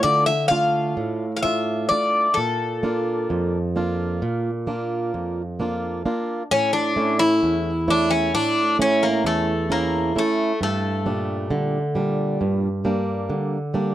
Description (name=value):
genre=greek folk, Greek bouzouki band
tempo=131 BPM (eighths)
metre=9/8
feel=straight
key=A phrygian dominant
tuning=A4 = 439 Hz
part: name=Greek bouzouki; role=melody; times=0.0-12.4 s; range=A3 to F5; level=-21 LUFS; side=left 2 dB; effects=none
part: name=fingerpicked plugged-in swing-style acoustic guitar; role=accompaniment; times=0.0-13.9 s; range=E2 to C#5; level=-22 LUFS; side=right 2 dB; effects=none
room=little or no reverb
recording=dry, close 1970s-style studio recording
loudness=-20 LUFS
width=side -12 dB against mid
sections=0.0-6.5 A section; 6.5-13.9 A section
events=speeding up 0.0-13.9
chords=0.0 Dm; 2.4 Bb; 6.5 A; 10.6 Gm